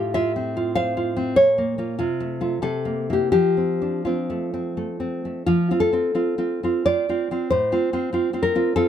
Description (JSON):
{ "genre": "romantic piece for solo classical guitar", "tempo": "80-101 BPM", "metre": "3/4", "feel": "rubato", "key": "F major", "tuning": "A4 = 437 Hz", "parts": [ { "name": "nylon-string guitar", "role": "solo", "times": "0.0-8.9 s", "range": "A2 to F5", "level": "-20 LUFS", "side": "equal", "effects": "none" } ], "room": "light reverb", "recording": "none", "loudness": "-20 LUFS", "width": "side -9 dB against mid", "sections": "0.0-5.5 A section; 5.5-8.9 B section", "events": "none", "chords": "0.0 F/A; 1.4 Bbm; 2.0 F/C; 2.6 C7; 3.3 F; 7.5 F/A" }